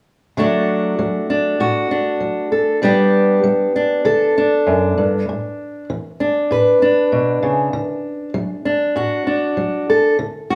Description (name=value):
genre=folk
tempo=98 BPM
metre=4/4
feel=straight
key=D major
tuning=A4 = 439 Hz
part: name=fingerpicked steel-string acoustic guitar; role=solo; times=0.4-10.6 s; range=F#2 to B4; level=-17 LUFS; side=equal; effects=none
room=moderate large studio reverb, RT60 0.8 s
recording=band playing live in one room, small room ambience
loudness=-17 LUFS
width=mono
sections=0.4-10.2 A section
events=none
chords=0.4 D; 2.8 G; 5.3 Asus4; 7.7 D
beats=| 0.37 0.98 1.60 2.21 | 2.83 3.44 4.06 4.67 | 5.29 5.90 6.51 7.13 | 7.74 8.36 8.97 9.59 | 10.20